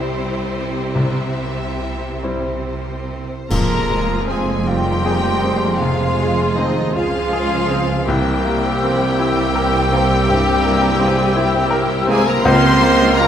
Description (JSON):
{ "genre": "classical, romantic movement for piano and orchestra", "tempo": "44-56 BPM (dotted quarters)", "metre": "12/8", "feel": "rubato", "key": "F minor", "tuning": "A4 = 440 Hz", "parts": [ { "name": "clear grand piano", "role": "melody", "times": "0.0-13.3 s", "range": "C2 to G5", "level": "-21 LUFS", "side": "left 2 dB", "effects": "none" }, { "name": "warm symphonic violin section", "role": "melody", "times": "0.0-13.3 s", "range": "C5 to C6", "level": "-24 LUFS", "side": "left 2 dB", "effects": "none" }, { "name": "rich studio violin section", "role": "second line", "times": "0.0-13.3 s", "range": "C4 to C5", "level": "-28 LUFS", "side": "left 3 dB", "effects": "none" }, { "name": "warm symphonic viola section", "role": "accompaniment", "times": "0.0-13.3 s", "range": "Eb3 to E4", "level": "-26 LUFS", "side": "right 1 dB", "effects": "none" }, { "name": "mellow French horn section", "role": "sustained chords", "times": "0.0-13.3 s", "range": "Eb3 to C4", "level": "-24 LUFS", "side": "left 1 dB", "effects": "none" }, { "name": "rich symphonic cello section", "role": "bass", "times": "0.0-13.3 s", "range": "C2 to C3", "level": "-27 LUFS", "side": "right 2 dB", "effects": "none" }, { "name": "rich symphonic double bass section", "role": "bass", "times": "0.0-13.3 s", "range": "F1 to Db2", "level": "-26 LUFS", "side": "right 4 dB", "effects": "none" }, { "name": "mellow hollow small flute group", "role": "second line", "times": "3.5-13.3 s", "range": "C6 to F6", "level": "-26 LUFS", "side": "left 2 dB", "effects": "none" }, { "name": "dark bassoon", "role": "accompaniment", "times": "3.5-13.3 s", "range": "Ab3 to Bb3", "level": "-28 LUFS", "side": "right 4 dB", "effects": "none" }, { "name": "mellow trumpet", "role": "stabs", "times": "3.5-13.3 s", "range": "Eb4 to C5", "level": "-23 LUFS", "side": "right 1 dB", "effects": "none" }, { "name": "mellow tuba", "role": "bass", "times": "3.5-13.3 s", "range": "F1 to Db2", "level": "-25 LUFS", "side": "right 4 dB", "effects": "none" }, { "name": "clash cymbals and concert bass drum", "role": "percussion", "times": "3.5-5.0 s", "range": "none", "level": "-25 LUFS", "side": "equal", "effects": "none" }, { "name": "warm trombone section", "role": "sustained chords", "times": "4.3-13.3 s", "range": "E3 to C4", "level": "-29 LUFS", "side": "right 3 dB", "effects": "none" } ], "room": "wet recital hall reverb, RT60 1.5 s", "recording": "none", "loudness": "-15 LUFS", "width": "side -9 dB against mid", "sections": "0.0-3.5 A section; 3.5-13.3 B section", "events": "band accent 3.5-4.3", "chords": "0.0 C; 3.5 Fm; 8.1 C7; 12.5 Db6" }